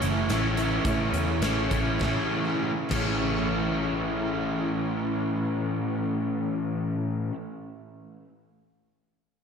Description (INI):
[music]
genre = rock, shoegaze and dream pop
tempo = 100 BPM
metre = 4/4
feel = straight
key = A major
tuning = A4 = 440 Hz
[part]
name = picked twelve-string acoustic guitar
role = arpeggios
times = 0.0-7.3 s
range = E3 to G#4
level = -37 LUFS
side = right 1 dB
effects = analog chorus, ping-pong delay
[part]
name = overdriven electric guitar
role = riff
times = 0.0-7.3 s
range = A2 to E4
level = -28 LUFS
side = left 5 dB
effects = ensemble chorus
[part]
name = overdriven electric guitar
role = riff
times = 0.0-7.3 s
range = A2 to E4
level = -30 LUFS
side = right 7 dB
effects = reverse reverb
[part]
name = vintage muted picked electric bass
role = bass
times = 0.0-7.3 s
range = F#1 to A2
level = -31 LUFS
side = equal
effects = none
[part]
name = huge arena drum kit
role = drums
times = 0.0-3.1 s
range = crash cymbal, hi-hat, kick drum, snare drum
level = -33 LUFS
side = equal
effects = none
[sound]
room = wet lush hall reverb, RT60 1.9 s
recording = dreamy mix soaked in reverb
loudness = -25 LUFS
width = side -6 dB against mid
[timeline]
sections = 0.0-2.0 A section; 2.0-6.8 B section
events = slowing down 0.0-2.0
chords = 0.0 Amaj7